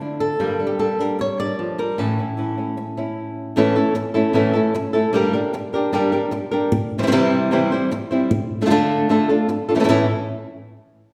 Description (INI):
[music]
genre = flamenco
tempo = 152 BPM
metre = 4/4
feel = straight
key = A phrygian dominant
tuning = A4 = 440 Hz
[part]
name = flamenco guitar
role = melody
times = 0.0-10.1 s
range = A2 to D5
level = -21 LUFS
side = equal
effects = none
[part]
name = flamenco guitar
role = stabs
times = 0.0-10.0 s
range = G2 to A4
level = -28 LUFS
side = equal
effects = none
[sound]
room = wet recital hall reverb, RT60 1.4 s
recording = recorded in a church or concert hall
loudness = -20 LUFS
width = mono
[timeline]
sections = 0.0-3.6 A section; 3.6-9.9 B section; 9.9-11.1 C section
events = none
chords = 0.4 Gmadd9; 2.0 A; 5.1 Gm; 6.7 C; 8.3 Dm; 9.9 A